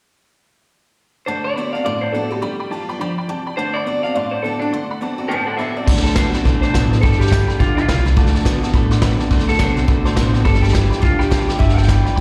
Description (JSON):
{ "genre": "rockabilly", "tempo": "210 BPM", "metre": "4/4", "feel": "swing 61% on 8ths", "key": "D mixolydian", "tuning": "A4 = 440 Hz", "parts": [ { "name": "electric guitar through a small old amp", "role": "melody", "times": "1.3-12.2 s", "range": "D4 to A5", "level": "-24 LUFS", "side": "equal", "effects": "slapback echo, analog delay" }, { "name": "honky-tonk upright piano", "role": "accompaniment", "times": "1.3-12.2 s", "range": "D5 to D6", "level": "-31 LUFS", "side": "equal", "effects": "slapback echo" }, { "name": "picked steel-string acoustic guitar", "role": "accompaniment", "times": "1.3-12.2 s", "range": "A2 to F#4", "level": "-30 LUFS", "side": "equal", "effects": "slapback echo" }, { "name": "electric guitar through a small old amp", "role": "riff", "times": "1.3-12.2 s", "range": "G2 to B3", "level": "-26 LUFS", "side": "equal", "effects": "slapback echo" }, { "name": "upright bass", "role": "bass", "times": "5.9-12.2 s", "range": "G1 to D2", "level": "-20 LUFS", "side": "equal", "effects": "none" }, { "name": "vintage brush drum kit", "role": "drums", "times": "5.9-12.2 s", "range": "crash cymbal, hi-hat, kick drum, snare drum", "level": "-20 LUFS", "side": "equal", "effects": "none" } ], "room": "light reverb", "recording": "live gig heard through the venue's PA, recital hall reverb", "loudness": "-17 LUFS", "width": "mono", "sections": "1.3-5.9 A section; 5.9-12.2 B section", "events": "none", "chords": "1.3 D7; 2.4 G7; 3.6 D7; 7.0 G7; 8.2 D7; 10.5 G7" }